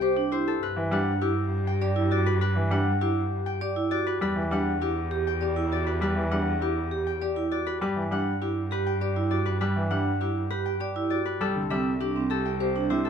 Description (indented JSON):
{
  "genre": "classical, minimalist pattern music",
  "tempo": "100 BPM",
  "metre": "3/4",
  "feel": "straight",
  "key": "G major",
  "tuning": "A4 = 438 Hz",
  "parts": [
    { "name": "Celtic harp", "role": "melody", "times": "0.0-13.1 s", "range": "G4 to G5", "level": "-30 LUFS", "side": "left 8 dB", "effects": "none" },
    { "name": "vibraphone with medium hard mallets", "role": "arpeggios", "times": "0.0-13.1 s", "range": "C4 to D5", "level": "-29 LUFS", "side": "right 5 dB", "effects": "none" },
    { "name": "rich cello", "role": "bass", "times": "0.0-13.1 s", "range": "C2 to G2", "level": "-30 LUFS", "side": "right 2 dB", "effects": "none" },
    { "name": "bright concert grand piano", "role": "accompaniment", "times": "0.8-13.1 s", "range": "C3 to G3", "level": "-28 LUFS", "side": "equal", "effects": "none" }
  ],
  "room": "light reverb",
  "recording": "close, detailed microphones",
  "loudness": "-24 LUFS",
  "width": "side -7 dB against mid",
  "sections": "0.0-13.1 A section",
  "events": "none",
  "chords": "0.0 C6; 0.6 Gmaj7; 4.2 Em7; 7.8 Gmaj7; 11.4 C6"
}